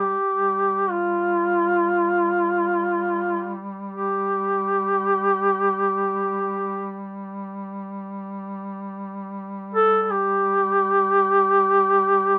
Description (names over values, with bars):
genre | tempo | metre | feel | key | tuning
caucasian folk, Caucasian lament | free time | none | none | unclear | A4 = 441 Hz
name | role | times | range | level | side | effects
warm duduk | melody | 0.0-12.4 s | F4 to A4 | -21 LUFS | equal | none
warm duduk | drone | 0.0-12.4 s | G3 | -34 LUFS | equal | none
room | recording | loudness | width
little or no reverb | rough home demo mix | -21 LUFS | mono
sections
0.0-12.4 A section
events
none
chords
none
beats
free time